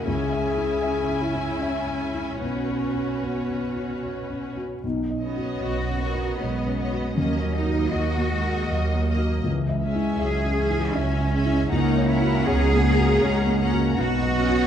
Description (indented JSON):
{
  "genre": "cinematic, emotional film score for orchestra",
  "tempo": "78 BPM",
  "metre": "3/4",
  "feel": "rubato",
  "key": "B major",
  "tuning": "A4 = 440 Hz",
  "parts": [
    { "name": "wooden-headed alto flute", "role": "melody", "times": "0.0-4.0 s", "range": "B3 to G#4", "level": "-28 LUFS", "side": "left 2 dB", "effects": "none" },
    { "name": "rich studio violin section", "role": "second line", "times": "0.0-14.7 s", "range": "B4 to G#5", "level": "-34 LUFS", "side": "left 3 dB", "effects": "none" },
    { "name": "clear studio viola section", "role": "accompaniment", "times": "0.0-14.7 s", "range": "A#3 to F#4", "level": "-33 LUFS", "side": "right 2 dB", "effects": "none" },
    { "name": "felt-muted upright piano", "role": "accompaniment", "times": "0.0-14.7 s", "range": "B1 to E5", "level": "-28 LUFS", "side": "left 2 dB", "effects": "none" },
    { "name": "rich studio cello section", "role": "bass", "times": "0.0-14.7 s", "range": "B2 to G#4", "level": "-29 LUFS", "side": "right 2 dB", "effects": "none" },
    { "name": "mellow French horn section", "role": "sustained chords", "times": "4.8-14.7 s", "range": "E3 to A#4", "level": "-28 LUFS", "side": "left 3 dB", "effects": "none" },
    { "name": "clear studio double bass section", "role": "bass", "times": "4.8-14.6 s", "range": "B1 to D#2", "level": "-25 LUFS", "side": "right 3 dB", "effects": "none" },
    { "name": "rich studio violin section", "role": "melody", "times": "5.2-14.7 s", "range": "D#5 to A#5", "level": "-36 LUFS", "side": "left 2 dB", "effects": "none" },
    { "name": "dark clarinet", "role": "second line", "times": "5.6-14.7 s", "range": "B3 to G#4", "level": "-32 LUFS", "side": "equal", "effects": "none" }
  ],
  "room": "moderate scoring stage reverb, RT60 2.0 s",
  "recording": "dark, warm production",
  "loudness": "-21 LUFS",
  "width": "side -9 dB against mid",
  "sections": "0.0-4.8 A section; 4.8-14.7 A section",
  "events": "none",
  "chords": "0.1 C#m; 2.4 Bsus2; 4.8 Badd9; 7.2 D#m; 9.5 C#m; 11.7 F#add9/C#; 14.0 Badd9",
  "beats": "| 0.07 0.84 1.63 | 2.42 3.23 4.04 | 4.84 5.62 6.39 | 7.16 7.93 8.70 | 9.46 10.21 10.97 | 11.72 12.48 13.24 | 13.99"
}